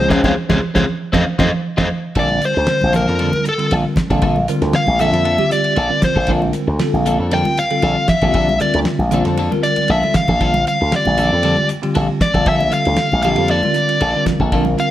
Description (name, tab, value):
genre	electric jazz fusion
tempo	116 BPM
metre	4/4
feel	straight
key	Bb lydian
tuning	A4 = 440 Hz
part	smooth overdriven lead guitar	melody	0.0-14.9 s	Ab4 to G5	-18 LUFS	left 1 dB	slapback echo, plate reverb
part	bell-like tine electric piano	accompaniment	0.0-14.9 s	C3 to C5	-21 LUFS	right 1 dB	fast stereo tremolo, phaser
part	clean electric guitar	stabs	0.0-14.8 s	F3 to A4	-25 LUFS	left 3 dB	analog chorus
part	slap bass with an envelope filter	bass	0.0-14.7 s	Bb1 to F2	-18 LUFS	equal	none
part	damped 70s drum kit	drums	0.1-14.9 s	hi-hat, kick drum, ride cymbal, snare drum	-23 LUFS	equal	none
part	congas	percussion	0.1-14.8 s	none	-24 LUFS	right 1 dB	none
room	moderate studio reverb, RT60 0.7 s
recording	none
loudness	-14 LUFS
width	side -13 dB against mid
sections	0.0-2.2 A section; 2.2-14.9 B section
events	band accent 0.1-2.2; drum fill 1.5-2.2, 9.8-10.4; lead electric guitar solo 2.2-14.9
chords	0.0 Dbmaj9; 0.9 N.C.; 1.1 F7; 2.2 Bbmaj7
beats	| 0.10 0.62 1.14 1.65 | 2.17 2.68 3.20 3.71 | 4.23 4.75 5.26 5.78 | 6.29 6.81 7.32 7.84 | 8.35 8.87 9.38 9.90 | 10.41 10.93 11.44 11.96 | 12.47 12.98 13.50 14.01 | 14.53